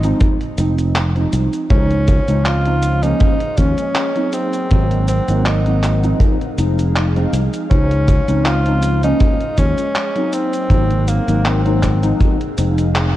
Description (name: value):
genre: vaporwave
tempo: 80 BPM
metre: 4/4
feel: swing 54% on 16ths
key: Db major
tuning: A4 = 440 Hz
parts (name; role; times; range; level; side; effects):
- clear tenor saxophone; melody; 0.0-12.2 s; Bb3 to F4; -23 LUFS; equal; tape echo
- warbly lo-fi synth keys; accompaniment; 0.0-13.1 s; F3 to C5; -20 LUFS; equal; lush chorus, tape echo
- fingered electric bass; bass; 0.0-13.2 s; F1 to Eb2; -16 LUFS; equal; none
- detuned 8-bit digital drum machine; drums; 0.0-13.1 s; cabasa, handclaps, hi-hat; -24 LUFS; equal; studio reverb
- kick drum; drums; 0.2-12.4 s; none; -16 LUFS; equal; studio reverb
- soft string machine; sustained chords; 2.3-13.2 s; C4 to Gb5; -29 LUFS; equal; ensemble chorus
room: small room ambience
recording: dark, warm production, cassette tape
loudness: -14 LUFS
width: side -14 dB against mid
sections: 0.0-13.2 A section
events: band accent 13.0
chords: 0.2 Fm7; 1.7 Dbmaj7; 3.2 Eb7sus4; 4.3 Ab9; 6.2 Fm7; 7.7 Dbmaj7; 9.2 Eb7sus4; 10.3 Ab9; 12.2 Fm7